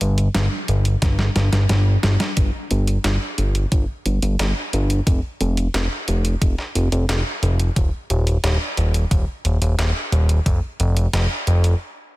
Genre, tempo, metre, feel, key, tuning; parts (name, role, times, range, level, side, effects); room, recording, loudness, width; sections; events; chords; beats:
synthwave; 89 BPM; 4/4; straight; A4 = 440 Hz
fat analog bass; bass; 0.0-11.7 s; Eb1 to G1; -18 LUFS; equal
detuned 8-bit digital drum machine; drums; 0.0-11.8 s; hi-hat, snare drum; -25 LUFS; equal; high-pass filter on hats, studio ambience, high-pass filter on snare
electronic kick drum; drums; 1.0-10.6 s; -19 LUFS; equal; studio ambience
digital ambience; dense, heavily limited modern master; -17 LUFS; side -19 dB against mid
0.0-2.4 A section; 2.4-12.2 B section
drum fill 1.0-2.4; stop 11.8-12.2
0.35 1.02 1.70 | 2.37 3.04 3.72 4.39 | 5.07 5.74 6.42 7.09 | 7.76 8.44 9.11 9.79 | 10.46 11.13